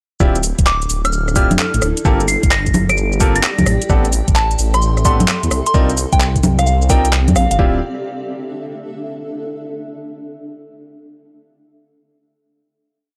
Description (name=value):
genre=UK garage, two-step garage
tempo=130 BPM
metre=4/4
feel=swing 66% on 16ths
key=D minor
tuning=A4 = 440 Hz
part: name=bright grand piano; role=stabs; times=0.2-7.8 s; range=Bb3 to Bb4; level=-24 LUFS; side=equal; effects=none
part: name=dark detuned saw bass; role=bass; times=0.2-7.8 s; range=D1 to F2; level=-20 LUFS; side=equal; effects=none
part: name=electronic kick drum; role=drums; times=0.2-7.7 s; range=none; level=-18 LUFS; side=equal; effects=none
part: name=garage drum kit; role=drums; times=0.2-7.6 s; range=congas, handclaps, hi-hat, rim click, shaker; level=-20 LUFS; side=equal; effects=none
part: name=granular cloud pad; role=texture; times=0.9-9.4 s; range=C4 to C6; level=-29 LUFS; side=equal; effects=built-in reverb, sidechain pumping
part: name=soft synth bell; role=melody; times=0.7-7.6 s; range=F5 to D7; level=-22 LUFS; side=equal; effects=chorus, tape echo
room=little or no reverb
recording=dry, gritty hardware recording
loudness=-15 LUFS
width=mono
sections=0.2-7.6 drop; 7.6-9.4 final chord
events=drop 0.2-7.6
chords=0.2 Dm11; 2.0 Gm11; 3.7 Am11; 5.5 Cm11; 7.6 Dsus2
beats=| 0.20 0.67 1.13 1.59 | 2.05 2.51 2.97 3.44 | 3.90 4.36 4.82 5.28 | 5.74 6.20 6.67 7.13 | 7.59 8.05 8.51 8.97